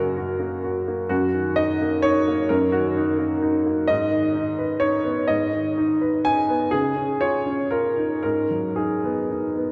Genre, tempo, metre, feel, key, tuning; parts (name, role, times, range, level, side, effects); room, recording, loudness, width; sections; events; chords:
neoclassical minimalist piano; 112-133 BPM; 3/4; rubato; G# dorian; A4 = 440 Hz
warm upright piano; solo; 0.0-9.7 s; F#2 to G#5; -22 LUFS; equal
wet cathedral reverb, RT60 4.5 s; recorded in a church or concert hall; -22 LUFS; mono
0.0-9.7 A section
0.0 F#; 1.1 D#m/F#; 3.9 G#m; 6.7 C#add9; 8.2 G#m7